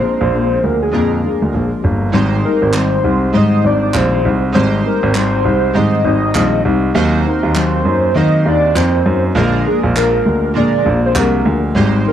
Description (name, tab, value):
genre	indie pop, bedroom pop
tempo	100 BPM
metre	4/4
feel	swing 60% on 16ths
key	Ab lydian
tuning	A4 = 440 Hz
part	soft octave-layered synth lead	melody	0.0-12.1 s	Ab4 to Eb5	-18 LUFS	equal	analog chorus, slapback echo
part	chorused retro synth keys	accompaniment	0.0-12.1 s	Ab3 to C5	-22 LUFS	right 4 dB	cassette tape
part	nylon-string guitar	accompaniment	0.0-12.1 s	Ab2 to Bb4	-18 LUFS	left 4 dB	wide subtle chorus, warbly pitch drift
part	warm baby grand piano	bass	0.2-12.0 s	G1 to Eb3	-15 LUFS	right 1 dB	none
part	group handclap	percussion	2.7-11.3 s	none	-23 LUFS	right 2 dB	none
room	light reverb, studio ambience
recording	dark, warm production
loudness	-12 LUFS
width	side -10 dB against mid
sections	0.0-2.1 A section; 2.1-12.1 B section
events	none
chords	0.0 Bb7; 2.1 Abmaj7; 6.9 Ebm6; 9.4 Bb7